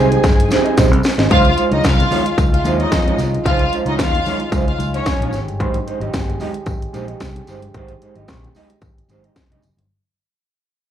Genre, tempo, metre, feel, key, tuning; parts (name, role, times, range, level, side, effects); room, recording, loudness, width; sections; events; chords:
disco; 112 BPM; 4/4; straight; Ab major; A4 = 439 Hz
dark studio string section; second line; 0.0-5.3 s; Db4 to Ab5; -21 LUFS; left 1 dB; slapback echo
mellow electric guitar; accompaniment; 0.0-9.8 s; Ab3 to Eb5; -21 LUFS; right 4 dB; vibrato effect, slapback echo
mellow French horn section; sustained chords; 0.0-9.9 s; Db3 to Ab4; -26 LUFS; left 2 dB
fingered electric bass; bass; 0.0-9.9 s; F1 to F2; -20 LUFS; equal
house drum kit; drums; 0.1-9.9 s; hi-hat, kick drum, snare drum; -18 LUFS; equal; overdrive
congas; percussion; 0.2-9.9 s; -28 LUFS; left 7 dB
tambourine; percussion; 0.2-9.8 s; -39 LUFS; right 2 dB
light reverb; live gig heard through the venue's PA, club reverb; -14 LUFS; side -10 dB against mid
0.0-1.3 A section; 1.3-9.9 B section
drum fill 0.2-1.3; fade-out 1.3-9.9
0.0 Abmaj7; 1.3 Dbmaj9; 5.3 Abmaj7